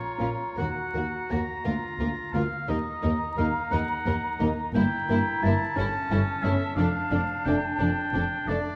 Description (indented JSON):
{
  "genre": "classical, slow romantic movement for symphony orchestra",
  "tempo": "58 BPM (dotted quarters)",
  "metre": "6/8",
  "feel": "rubato",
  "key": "D minor from 4.7 s",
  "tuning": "A4 = 440 Hz",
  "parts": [
    { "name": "bright clarinet", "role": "second line", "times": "0.0-8.8 s", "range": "C#4 to Gb4", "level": "-38 LUFS", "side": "equal", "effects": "none" },
    { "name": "clear oboe", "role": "second line", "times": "0.0-8.8 s", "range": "Db5 to Bb5", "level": "-34 LUFS", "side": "equal", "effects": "none" },
    { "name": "mellow hollow silver concert flute", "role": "second line", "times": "0.0-8.6 s", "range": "A5 to Bb5", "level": "-37 LUFS", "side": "equal", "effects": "none" },
    { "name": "warm symphonic violin section", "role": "melody", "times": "0.2-8.6 s", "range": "A4 to Bb4", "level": "-41 LUFS", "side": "equal", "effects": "none" },
    { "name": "rich symphonic violin section", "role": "second line", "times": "0.2-8.6 s", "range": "D4 to Gb4", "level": "-40 LUFS", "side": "equal", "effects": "none" },
    { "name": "rich symphonic viola section", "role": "accompaniment", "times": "0.2-8.6 s", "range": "Bb3 to D4", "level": "-36 LUFS", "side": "equal", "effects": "none" },
    { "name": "warm French horn section", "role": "sustained chords", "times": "0.2-8.6 s", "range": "A3 to Gb4", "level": "-35 LUFS", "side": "equal", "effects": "none" },
    { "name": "rich studio double bass section", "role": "bass", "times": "0.2-8.6 s", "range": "F1 to Eb2", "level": "-34 LUFS", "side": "equal", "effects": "none" },
    { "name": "rich symphonic cello section", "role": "bass", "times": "0.2-8.6 s", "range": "D2 to Bb2", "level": "-34 LUFS", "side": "equal", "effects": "none" }
  ],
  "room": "moderate recital hall reverb, RT60 1.8 s",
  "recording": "vinyl crackle",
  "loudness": "-27 LUFS",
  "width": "mono",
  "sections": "0.0-8.8 A section",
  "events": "none",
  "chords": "0.0 Bbm; 0.6 Ebm; 1.7 Bb; 2.7 Ebm; 4.7 Edim/G; 5.8 A7/G; 6.8 Dm/F",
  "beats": "| 0.59 1.66 | 2.69 3.72 | 4.75 5.78 | 6.77 7.80"
}